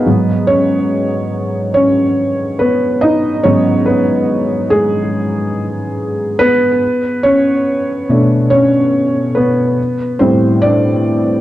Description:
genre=hip hop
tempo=71 BPM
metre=4/4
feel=swing 56% on 16ths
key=unclear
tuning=A4 = 440 Hz
part: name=felt-muted upright piano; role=solo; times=0.0-11.4 s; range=G#2 to D#5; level=-11 LUFS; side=equal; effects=cassette tape, tape echo
room=moderate small room reverb, RT60 0.5 s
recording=cassette tape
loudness=-11 LUFS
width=side -14 dB against mid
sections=0.1-11.4 A section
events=felt piano solo 0.1-11.4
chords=0.1 G#m7; 6.8 Bm7; 9.8 Am7

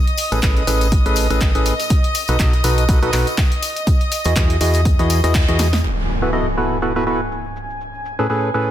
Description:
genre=piano house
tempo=122 BPM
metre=4/4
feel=swing 56% on 16ths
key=B mixolydian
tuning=A4 = 440 Hz
part: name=rich chamber string section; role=sustained chords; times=0.0-8.7 s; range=D#5 to G#6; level=-26 LUFS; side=equal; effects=sidechain pumping, low-pass filter
part: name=punchy analog drum machine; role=drums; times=0.1-8.7 s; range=handclaps, hi-hat, shaker, snare drum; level=-25 LUFS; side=equal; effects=low-pass filter on snare, low-pass filter on hats, low-pass filter on perc
part: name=tambourine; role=percussion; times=0.2-5.8 s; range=none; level=-29 LUFS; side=left 9 dB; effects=none
part: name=percussive organ stab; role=riff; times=0.3-8.7 s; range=A2 to D#5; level=-20 LUFS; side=equal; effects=chorus, sidechain pumping, digital delay
part: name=solid FM bass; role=bass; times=0.3-5.8 s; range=A1 to E2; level=-18 LUFS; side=equal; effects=sidechain pumping
part: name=electronic kick drum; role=drums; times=0.4-5.5 s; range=none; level=-16 LUFS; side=equal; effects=none
part: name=impact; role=sound effects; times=5.8-7.8 s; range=none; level=-24 LUFS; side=equal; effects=none
room=light reverb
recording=dense, heavily limited modern master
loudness=-15 LUFS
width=side -11 dB against mid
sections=0.0-5.8 A section; 5.8-8.7 B section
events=band accent 5.3; drum fill 5.6; impact 5.8-7.8; filter sweep on string section 5.8-8.7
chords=0.0 Amaj9; 1.9 B7; 3.9 Emaj9; 5.8 B7sus4; 7.6 Amaj9

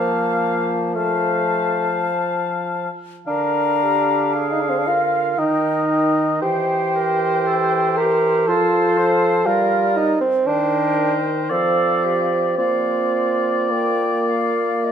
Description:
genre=classical, slow romantic movement for wind quintet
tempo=58 BPM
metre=3/4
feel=uneven beats, rubato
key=Bb major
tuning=A4 = 440 Hz
part: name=mellow silver concert flute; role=melody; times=0.0-14.9 s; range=D5 to Bb5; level=-25 LUFS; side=left 11 dB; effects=none
part: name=mellow oboe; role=second line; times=0.0-14.9 s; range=Bb4 to F5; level=-25 LUFS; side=left 4 dB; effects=none
part: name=clear French horn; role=accompaniment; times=0.0-14.9 s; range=D3 to Bb3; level=-27 LUFS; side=left 1 dB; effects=none
part: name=warm clarinet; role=accompaniment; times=0.0-14.9 s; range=F4 to C5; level=-25 LUFS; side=right 6 dB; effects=none
part: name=warm bassoon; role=bass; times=0.0-14.9 s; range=A3 to Bb4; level=-19 LUFS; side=right 2 dB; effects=none
room=moderate recital hall reverb, RT60 1.7 s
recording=minimal, uncompressed stereo recording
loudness=-17 LUFS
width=side -8 dB against mid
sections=0.0-14.9 A section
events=none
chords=0.0 F; 3.3 Bb7/D; 5.4 Eb; 6.4 C7/E; 8.5 F; 9.5 Gm7; 10.5 Cm/Eb; 11.5 F69; 12.6 Bb

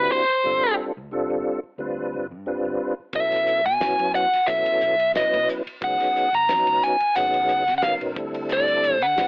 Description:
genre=electric jazz fusion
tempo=89 BPM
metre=4/4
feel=swing 54% on 16ths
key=unclear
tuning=A4 = 440 Hz
part: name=biting lead guitar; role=melody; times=0.0-9.3 s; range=C5 to A#5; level=-19 LUFS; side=equal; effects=overdrive
part: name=tonewheel organ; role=accompaniment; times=0.0-9.3 s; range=F#3 to B4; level=-26 LUFS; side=equal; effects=slow rotary speaker, chorus vibrato
part: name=fretless electric bass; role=bass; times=0.0-9.3 s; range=G1 to D3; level=-40 LUFS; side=equal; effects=none
part: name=damped 70s drum kit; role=drums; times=3.1-9.3 s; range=hi-hat, kick drum, ride cymbal, snare drum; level=-34 LUFS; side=equal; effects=none
room=light reverb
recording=telephone sound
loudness=-19 LUFS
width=side -36 dB against mid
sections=0.0-9.3 A section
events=none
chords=0.4 G9sus4; 3.1 B9sus4; 5.8 C#9sus4; 8.2 D9sus4

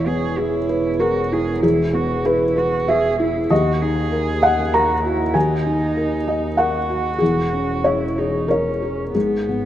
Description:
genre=neoclassical piano and strings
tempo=96 BPM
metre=3/4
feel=rubato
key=unclear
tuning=A4 = 440 Hz
part: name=muted cello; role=second line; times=0.0-9.7 s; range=B3 to G#4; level=-25 LUFS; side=right 6 dB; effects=none
part: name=felt-muted upright piano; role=accompaniment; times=0.0-9.7 s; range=D#2 to A#5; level=-18 LUFS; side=left 1 dB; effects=none
part: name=muted double bass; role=bass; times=0.0-9.7 s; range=E1 to D#2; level=-28 LUFS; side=equal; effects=none
room=moderate lush hall reverb, RT60 2.7 s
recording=rough home demo mix, nothing above 10.9 kHz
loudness=-17 LUFS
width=side -12 dB against mid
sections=0.0-9.7 A section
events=none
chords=0.0 E; 3.5 D#m; 7.2 C#m/E; 9.1 G#m

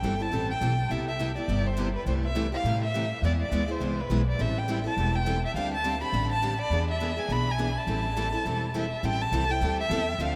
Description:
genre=acoustic string swing (jazz manouche)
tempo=207 BPM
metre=4/4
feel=swing 57% on 8ths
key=A minor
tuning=A4 = 440 Hz
part: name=warm violin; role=melody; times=0.0-10.4 s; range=B4 to B5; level=-32 LUFS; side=equal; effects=tape echo
part: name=picked steel-string acoustic guitar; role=accompaniment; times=0.0-10.4 s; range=C3 to A4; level=-36 LUFS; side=equal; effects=none
part: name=picked steel-string acoustic guitar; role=accompaniment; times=0.0-10.4 s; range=C3 to B4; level=-39 LUFS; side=equal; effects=none
part: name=upright bass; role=bass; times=0.0-10.4 s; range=E1 to A2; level=-31 LUFS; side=equal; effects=none
room=moderate huge ambient reverb, RT60 8.8 s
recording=in a vast, echoing space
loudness=-28 LUFS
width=mono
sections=0.0-9.0 A section; 9.0-10.4 B section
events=none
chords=0.0 Am7; 0.9 Cmaj7; 2.1 Am7/C; 3.2 E; 4.4 Am7; 5.5 D7sus4; 6.7 E7; 7.9 Am7

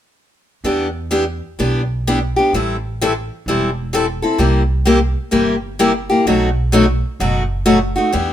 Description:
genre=acoustic string swing (jazz manouche)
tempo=128 BPM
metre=4/4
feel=swing 64% on 8ths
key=E minor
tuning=A4 = 439 Hz
part: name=picked steel-string acoustic guitar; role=accompaniment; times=0.6-8.3 s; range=B2 to A4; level=-15 LUFS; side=left 1 dB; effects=none
part: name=upright bass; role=bass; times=0.6-8.3 s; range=E1 to E2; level=-20 LUFS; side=right 1 dB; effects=none
room=light reverb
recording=minimal, uncompressed stereo recording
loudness=-14 LUFS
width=side -11 dB against mid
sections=0.6-8.1 A section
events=none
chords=0.6 Em7; 2.5 Am7; 4.4 C7; 6.3 B7

